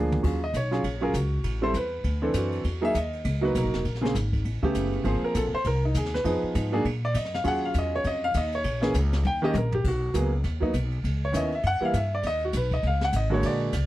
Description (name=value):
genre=jazz piano trio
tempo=200 BPM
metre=4/4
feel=swing 60% on 8ths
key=Eb minor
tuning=A4 = 443 Hz
part: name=clear grand piano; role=melody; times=0.0-13.9 s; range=Db3 to G5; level=-26 LUFS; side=equal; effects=none
part: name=upright bass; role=bass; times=0.0-13.9 s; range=E1 to Bb2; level=-27 LUFS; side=equal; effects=none
part: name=jazz brush drum kit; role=drums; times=0.1-13.8 s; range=crash cymbal, hi-hat, kick drum, ride cymbal, snare drum, toms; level=-34 LUFS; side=equal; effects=none
room=little or no reverb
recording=dry, close 1970s-style studio recording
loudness=-24 LUFS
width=side -15 dB against mid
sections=0.2-9.8 A section; 9.8-13.9 A section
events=drum fill 0.0, 9.2-9.8; grand piano solo 0.2-13.9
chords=0.2 Ebm11; 1.4 Am; 2.0 D9; 2.6 Emaj7(b5, no3); 3.8 Bb7(no3); 4.4 A9; 5.0 Ab69; 6.2 Fm7b5; 6.8 Gb; 7.4 Ebm11; 8.6 Bbm; 9.2 Eb; 9.8 Abm9 (rootless); 11.0 Dbm9; 11.6 Gb7(no3); 12.2 B69